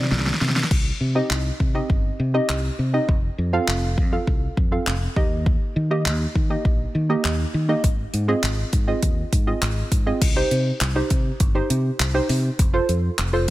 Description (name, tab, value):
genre	dance-pop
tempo	101 BPM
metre	4/4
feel	straight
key	C minor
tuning	A4 = 440 Hz
part	soft round pluck	accompaniment	0.0-13.5 s	Bb3 to F5	-25 LUFS	right 2 dB	chorus, sidechain pumping
part	fingered electric bass	bass	0.0-13.5 s	F1 to Eb3	-23 LUFS	equal	sidechain pumping
part	deep house drum kit	drums	0.0-13.5 s	crash cymbal, handclaps, hi-hat, kick drum, snare drum	-22 LUFS	equal	none
room	digital ambience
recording	none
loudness	-19 LUFS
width	side -16 dB against mid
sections	0.7-10.2 A section; 10.2-13.5 B section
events	drum fill 0.0-0.7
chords	0.0 Cm; 3.1 F; 5.2 Eb; 7.8 Ab6; 10.2 Cm; 12.6 F